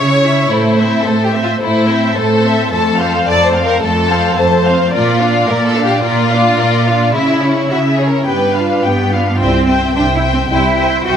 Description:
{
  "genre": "cinematic",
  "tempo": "108 BPM",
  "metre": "4/4",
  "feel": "straight",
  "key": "A phrygian",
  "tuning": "A4 = 440 Hz",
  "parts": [
    { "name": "dark symphonic violin section", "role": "melody", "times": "0.0-11.2 s", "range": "C5 to A5", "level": "-18 LUFS", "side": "left 4 dB", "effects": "none" },
    { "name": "warm symphonic violin section", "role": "second line", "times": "0.0-11.2 s", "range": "E4 to E5", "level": "-16 LUFS", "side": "left 2 dB", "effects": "none" },
    { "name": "rich symphonic viola section", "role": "accompaniment", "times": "0.0-11.2 s", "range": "A3 to D5", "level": "-19 LUFS", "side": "right 1 dB", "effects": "none" },
    { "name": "rich symphonic cello section", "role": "bass", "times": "0.0-11.2 s", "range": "F2 to F#4", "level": "-15 LUFS", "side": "right 2 dB", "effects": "none" },
    { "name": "dark French horn section", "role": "sustained chords", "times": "9.4-10.7 s", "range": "G3 to E4", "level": "-22 LUFS", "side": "left 2 dB", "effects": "none" },
    { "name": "rich symphonic double bass section", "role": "bass", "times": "9.4-11.2 s", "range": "C2", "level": "-17 LUFS", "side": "right 2 dB", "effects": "none" }
  ],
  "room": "wet scoring stage reverb, RT60 1.7 s",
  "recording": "none",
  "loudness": "-11 LUFS",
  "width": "side -8 dB against mid",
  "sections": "0.0-9.4 A section; 9.4-11.2 B section",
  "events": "none",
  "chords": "0.0 C#m; 0.5 Am; 2.7 F; 4.9 Bb; 7.2 C#m; 8.3 G7; 9.4 C"
}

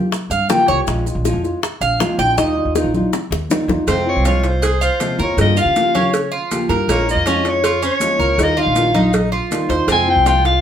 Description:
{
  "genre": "latin, Cuban son and guajira",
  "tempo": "160 BPM",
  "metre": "4/4",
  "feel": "straight",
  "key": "F minor",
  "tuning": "A4 = 440 Hz",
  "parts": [
    { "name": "nylon-string guitar", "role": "accompaniment", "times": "0.0-10.6 s", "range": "C3 to G4", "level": "-21 LUFS", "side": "left 1 dB", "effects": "none" },
    { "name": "bongos and cowbell", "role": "percussion", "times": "0.1-10.6 s", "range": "none", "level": "-22 LUFS", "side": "left 1 dB", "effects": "none" },
    { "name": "congas", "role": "percussion", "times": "0.1-10.6 s", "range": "none", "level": "-25 LUFS", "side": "equal", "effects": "none" },
    { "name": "maracas", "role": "percussion", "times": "0.1-10.6 s", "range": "none", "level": "-32 LUFS", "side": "right 8 dB", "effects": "none" },
    { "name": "Cuban tres", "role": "arpeggios", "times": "0.3-10.6 s", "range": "Bb3 to G5", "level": "-19 LUFS", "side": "right 2 dB", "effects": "none" },
    { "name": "upright bass", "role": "bass", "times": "0.3-10.6 s", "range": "Bb1 to Db3", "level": "-21 LUFS", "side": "equal", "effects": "none" },
    { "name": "warm soprano saxophone", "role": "melody", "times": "3.9-10.6 s", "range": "C5 to Ab5", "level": "-18 LUFS", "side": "left 2 dB", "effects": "none" }
  ],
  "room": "wet studio reverb, RT60 0.6 s",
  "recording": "band playing live in one room",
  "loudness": "-14 LUFS",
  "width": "side -9 dB against mid",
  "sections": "0.0-3.9 A section; 3.9-10.6 B section",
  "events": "Cuban tres solo 0.0-3.9; drum fill 3.1-3.9",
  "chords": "0.0 Gm7b5; 0.9 Bbm7; 2.4 Ebadd9; 3.9 Fm; 5.4 Gm7b5; 6.9 Bbm7; 8.4 Ebadd9; 9.9 Fm"
}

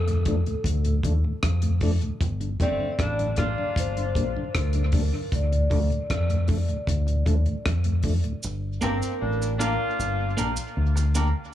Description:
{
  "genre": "dub reggae",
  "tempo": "77 BPM",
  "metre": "4/4",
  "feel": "straight",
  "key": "G minor",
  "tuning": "A4 = 438 Hz",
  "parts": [
    { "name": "vibraphone with soft mallets", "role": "melody", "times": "0.0-10.0 s", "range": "A4 to D5", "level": "-32 LUFS", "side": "equal", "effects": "dub echo" },
    { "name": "deep dub fingered electric bass", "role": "bass", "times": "0.0-11.3 s", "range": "G1 to F2", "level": "-24 LUFS", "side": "equal", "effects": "none" },
    { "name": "mellow tonewheel organ", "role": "accompaniment", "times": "0.1-8.3 s", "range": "D2 to D4", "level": "-30 LUFS", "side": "left 1 dB", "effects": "slow rotary speaker" },
    { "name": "deep reggae drum kit", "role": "drums", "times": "0.1-8.4 s", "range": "hi-hat, kick drum, rim click", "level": "-28 LUFS", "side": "equal", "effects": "none" },
    { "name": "clear horn section", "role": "second line", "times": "2.6-4.1, 8.8-10.3 s", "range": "F3 to F4", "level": "-31 LUFS", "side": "left 2 dB", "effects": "dub echo" },
    { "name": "cabasa", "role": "percussion", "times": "8.4-11.3 s", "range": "none", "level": "-36 LUFS", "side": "right 4 dB", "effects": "none" },
    { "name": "clean electric guitar", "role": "accompaniment", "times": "8.8-11.3 s", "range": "Bb3 to Bb4", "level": "-30 LUFS", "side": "right 2 dB", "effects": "dub echo" }
  ],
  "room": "studio ambience",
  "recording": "small room ambience",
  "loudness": "-22 LUFS",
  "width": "side -12 dB against mid",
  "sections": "0.0-11.5 A section",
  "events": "break 0.0-8.4; part muted 8.4-11.5",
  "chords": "0.0 Dm; 2.2 Gm; 5.3 Dm; 8.4 Gm"
}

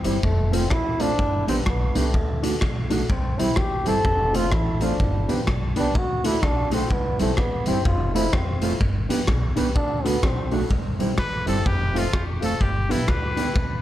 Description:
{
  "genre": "ska",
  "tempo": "126 BPM",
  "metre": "4/4",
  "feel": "swing 62% on 8ths",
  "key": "C major",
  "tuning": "A4 = 438 Hz",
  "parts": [
    { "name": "warm trombone", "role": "melody", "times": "0.0-10.5 s", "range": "A3 to A4", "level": "-27 LUFS", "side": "equal", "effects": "tape echo" },
    { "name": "mellow electric guitar", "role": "accompaniment", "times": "0.0-13.5 s", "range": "G3 to G4", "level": "-27 LUFS", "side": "right 5 dB", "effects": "lush chorus" },
    { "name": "dark upright piano", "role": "stabs", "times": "0.0-13.6 s", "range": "D4 to C5", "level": "-30 LUFS", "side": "left 4 dB", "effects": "tape echo" },
    { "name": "upright bass", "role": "bass", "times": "0.0-13.8 s", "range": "F1 to D2", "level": "-26 LUFS", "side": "equal", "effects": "none" },
    { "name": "raw garage drum kit", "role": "drums", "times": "0.0-13.7 s", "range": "hi-hat, kick drum, rim click", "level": "-24 LUFS", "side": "equal", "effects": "none" },
    { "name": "bright trumpet", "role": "melody", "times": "11.2-13.8 s", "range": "E4 to B4", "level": "-28 LUFS", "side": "left 1 dB", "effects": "tape echo" }
  ],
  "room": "light reverb",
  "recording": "none",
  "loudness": "-20 LUFS",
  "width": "side -13 dB against mid",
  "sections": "0.0-10.7 A section; 10.7-13.8 A section",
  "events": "trombone solo 0.0-10.7; trumpet solo 10.7-13.8",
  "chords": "0.2 F; 1.2 G; 2.1 D; 3.1 C; 4.0 F; 5.0 G; 6.0 D; 6.9 C; 7.9 F; 8.8 G; 9.8 D; 10.7 C; 11.7 F; 12.6 G"
}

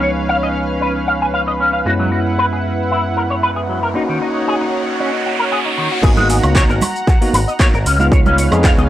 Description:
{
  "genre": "nu-disco, nu disco",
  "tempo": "115 BPM",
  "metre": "4/4",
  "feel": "straight",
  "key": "G# minor",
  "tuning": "A4 = 440 Hz",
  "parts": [
    { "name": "bell-like tine electric piano", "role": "accompaniment", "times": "0.0-8.9 s", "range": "C#2 to G#4", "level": "-20 LUFS", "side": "equal", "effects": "medium stereo tremolo, sidechain pumping, tape echo" },
    { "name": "lush unison pad", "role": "sustained chords", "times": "0.0-8.9 s", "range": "C#4 to A#5", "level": "-22 LUFS", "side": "right 1 dB", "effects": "chorus, sidechain pumping" },
    { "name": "electric guitar with an envelope filter", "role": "riff", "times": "0.0-8.8 s", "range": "D#3 to G#5", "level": "-18 LUFS", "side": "left 1 dB", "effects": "ensemble chorus, tape echo" },
    { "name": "riser", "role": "sound effects", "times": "3.1-6.0 s", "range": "none", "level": "-24 LUFS", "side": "right 2 dB", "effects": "none" },
    { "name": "fingered electric bass with an envelope filter", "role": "bass", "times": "6.0-8.9 s", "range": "G#1 to E#2", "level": "-16 LUFS", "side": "equal", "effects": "sidechain pumping" },
    { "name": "electronic kick drum", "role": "drums", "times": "6.0-8.7 s", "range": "none", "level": "-13 LUFS", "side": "equal", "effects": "none" },
    { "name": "house drum kit", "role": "drums", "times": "6.0-8.9 s", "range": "cabasa, crash cymbal, handclaps, hi-hat, woodblock", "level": "-22 LUFS", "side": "right 1 dB", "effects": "none" },
    { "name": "cabasa and congas", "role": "percussion", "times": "6.0-8.9 s", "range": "none", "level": "-25 LUFS", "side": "right 3 dB", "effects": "none" }
  ],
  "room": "light reverb, digital ambience",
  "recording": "dry, gritty hardware recording",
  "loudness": "-13 LUFS",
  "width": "side -13 dB against mid",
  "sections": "0.0-6.0 A section; 6.0-8.9 B section",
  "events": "riser 3.1-6.0; drop 6.0-8.9",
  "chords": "0.0 C#7; 1.9 F#7sus4; 3.9 D#m7; 6.0 G#m9; 7.9 C#7"
}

